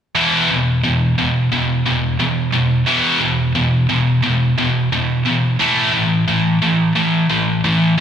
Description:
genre	rock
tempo	88 BPM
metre	4/4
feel	straight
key	unclear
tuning	A4 = 440 Hz
part	scooped high-gain guitar	solo	0.2-8.0 s	E2 to A3	-14 LUFS	equal	distortion, slapback echo
room	wet concert hall reverb, RT60 1.8 s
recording	big arena sound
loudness	-14 LUFS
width	side -8 dB against mid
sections	0.2-8.0 A section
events	none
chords	0.2 E5; 5.6 A5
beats	| 0.15 0.83 1.51 2.19 | 2.87 3.55 4.23 4.91 | 5.59 6.27 6.95 7.63

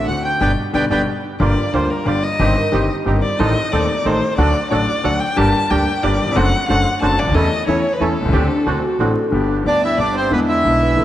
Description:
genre	tango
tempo	182 BPM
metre	3/4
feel	rubato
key	G harmonic minor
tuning	A4 = 440 Hz
part	bandoneon	melody	0.0-1.0, 9.7-11.0 s	B3 to G5	-19 LUFS	right 2 dB	none
part	warm violin	second line	0.0-11.0 s	A4 to A5	-21 LUFS	left 1 dB	none
part	bright baby grand piano	accompaniment	0.0-11.0 s	Eb1 to A4	-19 LUFS	left 2 dB	none
part	bandoneon	stabs	0.0-11.0 s	G#3 to C5	-25 LUFS	right 4 dB	none
part	upright bass	bass	0.0-11.0 s	F#1 to E2	-21 LUFS	equal	none
part	vibraphone with soft mallets	second line	2.6-3.1, 8.3-11.0 s	D4 to B4	-24 LUFS	right 1 dB	none
room	wet concert hall reverb, RT60 2.2 s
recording	vinyl crackle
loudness	-15 LUFS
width	side -12 dB against mid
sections	0.0-1.4 A section; 1.4-9.3 B section; 9.3-11.0 A section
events	band accent 0.4-1.4; violin solo 1.4-9.3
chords	0.4 G; 1.4 Gm7; 2.4 Cm/G; 3.4 Adim; 4.4 D; 5.4 Gm; 6.4 D7/F#; 7.3 A/E; 8.3 D7sus4; 8.7 D7; 9.3 G; 10.3 E7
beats	0.08 | 0.41 0.74 1.07 | 1.40 1.74 2.07 | 2.40 2.73 3.06 | 3.39 3.72 4.05 | 4.38 4.71 5.04 | 5.37 5.70 6.03 | 6.36 6.69 7.02 | 7.35 7.68 8.01 | 8.34 8.66 8.99 | 9.32 9.65 9.98 | 10.31 10.64 10.97

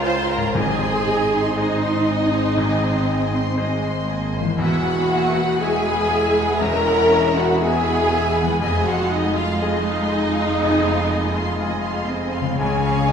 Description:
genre	cinematic, emotional film score for orchestra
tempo	60 BPM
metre	4/4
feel	rubato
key	unclear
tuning	A4 = 440 Hz
part	warm symphonic violin section	melody	0.0-13.1 s	Eb5 to C6	-30 LUFS	left 2 dB	none
part	dark symphonic violin section	second line	0.0-13.1 s	C5 to Db6	-28 LUFS	equal	none
part	mellow hollow concert flute	second line	0.0-13.1 s	Eb5 to C6	-29 LUFS	left 1 dB	none
part	bright concert grand piano	accompaniment	0.0-13.1 s	E1 to C5	-26 LUFS	left 2 dB	none
part	warm symphonic viola section	accompaniment	0.0-13.1 s	Eb4 to C5	-22 LUFS	right 1 dB	none
part	mellow French horn section	sustained chords	0.0-13.1 s	Ab3 to F4	-27 LUFS	left 2 dB	none
part	concert harp	arpeggios	0.0-13.1 s	Ab2 to C5	-29 LUFS	left 4 dB	none
part	rich symphonic double bass section	bass	0.0-13.1 s	Ab1 to F2	-27 LUFS	right 3 dB	none
part	warm symphonic cello section	bass	0.0-13.1 s	Ab3 to F4	-27 LUFS	right 2 dB	none
part	timpani	percussion	0.5-2.0 s	Ab2	-33 LUFS	left 1 dB	none
room	wet recital hall reverb, RT60 1.6 s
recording	recorded in a church or concert hall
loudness	-17 LUFS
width	side -7 dB against mid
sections	0.0-13.1 A section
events	none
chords	0.0 Db; 0.5 Ab; 4.6 Eadd9; 8.6 Fm7; 12.6 Db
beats	| 0.54 1.56 2.57 3.58 | 4.58 5.60 6.60 7.61 | 8.61 9.62 10.61 11.60 | 12.59

